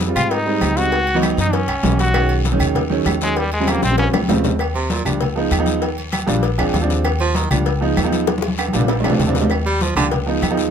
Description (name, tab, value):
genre	Afro-Cuban jazz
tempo	196 BPM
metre	4/4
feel	straight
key	Eb major from 4.6 s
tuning	A4 = 440 Hz
part	upright bass	bass	0.0-10.7 s	Bb1 to Ab2	-21 LUFS	left 1 dB	none
part	congas	percussion	0.0-10.7 s	none	-25 LUFS	left 2 dB	none
part	cowbell and bongos	percussion	0.0-10.7 s	none	-26 LUFS	left 9 dB	none
part	guiro	percussion	0.0-10.7 s	none	-32 LUFS	left 8 dB	none
part	warm concert grand piano	accompaniment	0.1-10.7 s	Db3 to Ab5	-20 LUFS	right 2 dB	none
part	brilliant trombone	melody	0.2-4.1 s	G3 to Gb4	-20 LUFS	left 1 dB	none
part	agogo bells and timbales	percussion	0.2-10.6 s	none	-26 LUFS	right 4 dB	none
part	claves	percussion	0.2-10.6 s	none	-31 LUFS	right 4 dB	none
part	edgy baritone saxophone	second line	4.7-5.1, 7.2-7.6, 9.7-10.1 s	G2 to G3	-21 LUFS	right 4 dB	none
room	light reverb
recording	none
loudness	-16 LUFS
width	side -8 dB against mid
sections	0.0-4.6 A section; 4.6-10.7 A section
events	trombone solo 0.0-4.6; drum fill 3.8-4.6, 8.3-9.5; baritone saxophone solo 4.6-10.7; grand piano fill 6.4-7.0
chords	0.0 Fm9; 0.9 Dbm11; 1.5 Gb7b9; 2.1 B69; 3.4 Eb13; 4.6 Ebmaj7; 5.2 Db7; 5.8 Ebmaj7; 6.4 Bb7; 7.0 Ebmaj7; 7.7 Db7; 8.3 Ebmaj7; 8.9 Bb7; 9.5 Ebmaj7; 10.1 Db7